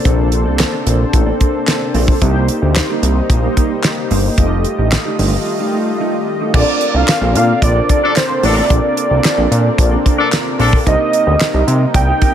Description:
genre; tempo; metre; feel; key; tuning
early-eighties boogie funk; 111 BPM; 4/4; straight; Bb major; A4 = 440 Hz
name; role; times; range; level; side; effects
mellow synth brass; accompaniment; 0.0-12.3 s; A3 to Eb5; -20 LUFS; left 2 dB; chorus
lush unison pad; sustained chords; 0.0-12.3 s; C3 to A4; -24 LUFS; equal; chorus
mellow electric guitar; riff; 0.1-12.3 s; A3 to Bb4; -24 LUFS; right 6 dB; lush chorus
fat analog bass; bass; 0.1-12.1 s; F1 to C3; -15 LUFS; equal; none
damped 70s drum kit; drums; 0.1-12.3 s; crash cymbal, handclaps, hi-hat, kick drum, snare drum; -16 LUFS; equal; none
fat analog lead; melody; 6.6-12.3 s; C5 to G5; -16 LUFS; right 2 dB; chorus, slapback echo
clear horn section; second line; 8.0-10.8 s; F3 to A4; -18 LUFS; left 4 dB; none
room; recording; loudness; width
studio reverb; none; -12 LUFS; side -10 dB against mid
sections
0.0-6.5 A section; 6.5-12.3 B section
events
break 5.5-6.5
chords
0.0 Bbmaj9; 2.2 Cm7; 4.4 F9; 6.5 Bbmaj9; 10.9 Cm7

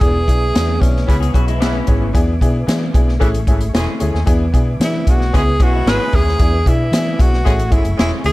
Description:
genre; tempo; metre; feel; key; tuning
uptempo 1960s-style soul; 113 BPM; 4/4; straight; E mixolydian; A4 = 439 Hz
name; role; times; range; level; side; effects
breathy tenor saxophone; melody; 0.0-1.3, 4.8-8.3 s; C#4 to B4; -20 LUFS; right 1 dB; slapback echo
bright upright piano; accompaniment; 0.0-8.3 s; A3 to G#4; -22 LUFS; left 2 dB; none
percussive tonewheel organ; sustained chords; 0.0-8.3 s; A3 to D6; -30 LUFS; equal; slow rotary speaker, chorus vibrato
vintage muted fingered electric bass; bass; 0.0-8.3 s; E1 to E3; -18 LUFS; equal; none
swinging big-band drum kit; drums; 0.0-8.3 s; hi-hat, kick drum, snare drum; -16 LUFS; equal; none
clear horn section; second line; 1.1-8.3 s; C#3 to G#4; -27 LUFS; equal; none
electric guitar through a small old amp; riff; 1.2-2.1, 5.6-6.4 s; E3 to G#4; -27 LUFS; left 5 dB; none
room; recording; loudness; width
little or no reverb; dark, warm production; -13 LUFS; side -18 dB against mid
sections
0.0-8.3 A section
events
none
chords
0.0 E7; 1.1 C#m7; 2.1 E7; 3.2 Amaj7; 4.3 E7; 5.3 C#m7; 6.4 E7; 7.5 Amaj7

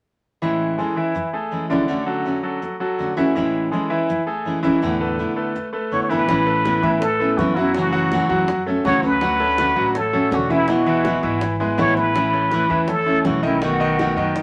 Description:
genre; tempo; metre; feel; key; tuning
latin, Cuban son and guajira; 164 BPM; 4/4; straight; A major; A4 = 440 Hz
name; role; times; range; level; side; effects
nylon-string guitar; accompaniment; 0.4-14.4 s; E2 to F#4; -24 LUFS; equal; none
bright concert grand piano; arpeggios; 0.4-14.4 s; D3 to F#5; -25 LUFS; equal; none
trumpet with plunger mute; melody; 5.9-14.4 s; E4 to C#5; -23 LUFS; equal; none
upright bass; bass; 6.3-14.4 s; E1 to A2; -31 LUFS; equal; none
bongos; percussion; 6.3-14.4 s; none; -33 LUFS; equal; none
room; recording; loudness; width
wet studio reverb, RT60 0.6 s; none; -20 LUFS; mono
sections
0.4-6.3 A section; 6.3-14.4 B section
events
none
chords
0.4 Amaj7; 1.9 Dmaj7; 3.4 Amaj7; 4.8 E7sus4; 6.3 Aadd9; 7.8 F#m7; 9.2 Dmaj7; 10.7 E; 12.2 A; 13.6 B7

